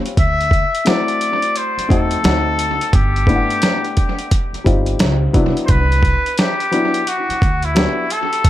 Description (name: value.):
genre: hip hop, jazz-hop.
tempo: 87 BPM.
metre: 4/4.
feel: swing 64% on 16ths.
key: unclear.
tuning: A4 = 440 Hz.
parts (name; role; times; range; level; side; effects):
dark upright piano; accompaniment; 0.0-8.0 s; F#3 to F#5; -22 LUFS; left 3 dB; analog delay.
dusty soul sampler-style drum kit; drums; 0.1-8.5 s; hi-hat, kick drum, snare drum; -17 LUFS; right 1 dB; overdrive, analog delay.
trumpet with straight mute; melody; 0.2-8.5 s; E4 to E5; -19 LUFS; left 1 dB; analog delay.
upright bass; bass; 0.2-8.5 s; G1 to E2; -19 LUFS; equal; none.
room: light reverb, small room reverb.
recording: echo-heavy mix.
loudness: -14 LUFS.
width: side -13 dB against mid.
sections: 0.0-8.5 A section.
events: none.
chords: 0.2 D9; 2.2 D7b9; 2.9 Gmaj7; 5.0 C#maj9#11; 5.7 Cmaj9#11.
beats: | 0.17 0.86 1.55 2.24 | 2.93 3.62 4.31 5.00 | 5.69 6.38 7.07 7.76 | 8.45.